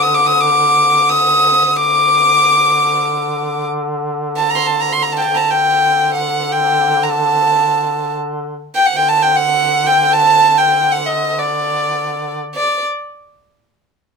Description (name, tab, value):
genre	Arabic maqam ensemble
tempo	free time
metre	none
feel	none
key	D maqam hijaz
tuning	A4 = 442 Hz
part	warm violin	melody	0.0-12.8 s	D5 to Eb6+29c	-12 LUFS	equal	none
part	warm duduk	drone	0.0-12.6 s	D3	-21 LUFS	equal	none
room	moderate studio reverb, RT60 0.7 s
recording	none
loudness	-12 LUFS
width	side -4 dB against mid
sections	0.0-12.5 A section; 12.5-14.2 B section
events	none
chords	none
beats	free time